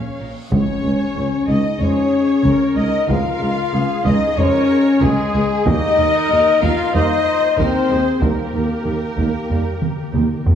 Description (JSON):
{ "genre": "cinematic, epic orchestral film score", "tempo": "94 BPM", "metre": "4/4", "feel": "straight", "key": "unclear", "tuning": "A4 = 439 Hz", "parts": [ { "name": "rich symphonic violin section", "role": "melody", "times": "0.0-10.5 s", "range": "Ab4 to F5", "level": "-27 LUFS", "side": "left 4 dB", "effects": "none" }, { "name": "rich studio violin section", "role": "second line", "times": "0.0-10.4 s", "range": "Db4 to F5", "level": "-30 LUFS", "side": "left 2 dB", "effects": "none" }, { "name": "clear symphonic viola section", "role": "accompaniment", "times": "0.0-10.4 s", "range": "G4 to Db5", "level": "-29 LUFS", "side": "right 2 dB", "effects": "none" }, { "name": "dark trombone section", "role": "sustained chords", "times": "0.0-9.7 s", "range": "Db3 to Bb3", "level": "-30 LUFS", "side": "right 3 dB", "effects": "none" }, { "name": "mellow French horn section", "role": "sustained chords", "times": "0.0-10.5 s", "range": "Ab3 to F4", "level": "-19 LUFS", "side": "left 3 dB", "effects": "none" }, { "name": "reverse cymbal and impact", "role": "sound effects", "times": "0.4-3.1 s", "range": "none", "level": "-32 LUFS", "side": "left 1 dB", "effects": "none" }, { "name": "rich symphonic double bass section", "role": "bass", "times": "0.2-10.5 s", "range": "Bb1 to Eb2", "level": "-25 LUFS", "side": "right 2 dB", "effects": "none" }, { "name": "warm symphonic cello section", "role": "bass", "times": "0.2-10.5 s", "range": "Db2 to Bb2", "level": "-24 LUFS", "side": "right 1 dB", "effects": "none" }, { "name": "hollow concert flute", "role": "second line", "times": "0.5-10.5 s", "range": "Ab4 to F5", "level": "-27 LUFS", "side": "left 3 dB", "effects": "none" }, { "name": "mellow trumpet section", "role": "stabs", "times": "0.5-10.4 s", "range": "Ab4 to F5", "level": "-25 LUFS", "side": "left 1 dB", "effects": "none" }, { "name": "mellow tuba", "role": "bass", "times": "0.5-10.6 s", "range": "Db2 to Eb2", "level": "-25 LUFS", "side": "right 3 dB", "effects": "none" }, { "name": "taiko ensemble", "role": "drums", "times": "0.5-10.6 s", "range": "none", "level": "-22 LUFS", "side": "equal", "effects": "none" } ], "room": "wet scoring stage reverb, RT60 1.8 s", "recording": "studio reverb", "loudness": "-15 LUFS", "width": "side -9 dB against mid", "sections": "0.5-10.6 A section", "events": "reverse cymbal 0.4; impact 0.5-3.1; drum fill 9.8-10.6", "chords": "0.0 Bbm; 0.5 Db; 5.7 Eb" }